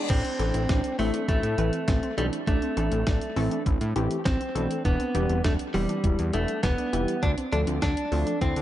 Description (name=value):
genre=synth-pop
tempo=101 BPM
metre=4/4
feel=straight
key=A minor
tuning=A4 = 438 Hz
part: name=direct-recorded clean electric guitar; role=melody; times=0.0-8.6 s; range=G3 to D4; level=-30 LUFS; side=equal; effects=dub echo
part: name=warbly dusty pluck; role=arpeggios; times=0.0-8.6 s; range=C4 to E4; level=-33 LUFS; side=right 2 dB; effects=chorus, dub echo
part: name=fat analog bass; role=bass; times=0.1-8.6 s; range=E1 to D3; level=-28 LUFS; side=equal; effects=none
part: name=clean 12-bit digital drum machine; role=drums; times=0.1-8.6 s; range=crash cymbal, handclaps, hi-hat, kick drum, snare drum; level=-28 LUFS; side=equal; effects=none
part: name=funky polysynth comp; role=accompaniment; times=0.4-8.3 s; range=E3 to B4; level=-31 LUFS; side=left 1 dB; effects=chorus, dub echo
room=light reverb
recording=echo-heavy mix, nothing above 10.9 kHz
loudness=-23 LUFS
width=side -13 dB against mid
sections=0.1-8.6 A section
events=none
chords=0.1 Am; 4.8 Em; 7.2 Dm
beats=| 0.10 0.69 1.29 1.88 | 2.47 3.07 3.66 4.26 | 4.85 5.44 6.04 6.63 | 7.23 7.82 8.41